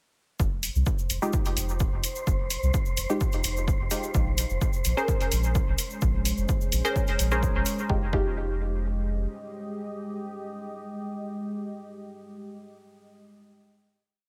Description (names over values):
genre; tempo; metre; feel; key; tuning
dub techno; 128 BPM; 4/4; straight; F minor; A4 = 439 Hz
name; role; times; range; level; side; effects
soft dub sub bass; bass; 0.4-9.3 s; F1 to C2; -30 LUFS; equal; sidechain pumping
electronic kick drum; drums; 0.4-8.3 s; none; -29 LUFS; equal; none
tube shaker; percussion; 0.4-7.9 s; none; -38 LUFS; equal; none
wind-like tuned noise texture; texture; 1.1-7.9 s; C5; -41 LUFS; equal; built-in reverb, sidechain pumping
electronic hi-hat; drums; 0.6-7.8 s; none; -34 LUFS; equal; none
filtered dub chord stab; stabs; 1.2-12.1 s; Ab3 to C5; -33 LUFS; equal; chorus, phaser, sidechain pumping, dub echo
deep dark ambient pad; sustained chords; 5.4-11.9 s; Ab3 to Eb5; -39 LUFS; equal; chorus, built-in reverb, sidechain pumping
room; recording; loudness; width
light reverb; none; -27 LUFS; mono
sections
0.4-7.9 groove; 7.9-11.6 final chord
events
none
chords
0.4 Fm9; 4.1 Bbm9; 7.9 Fm9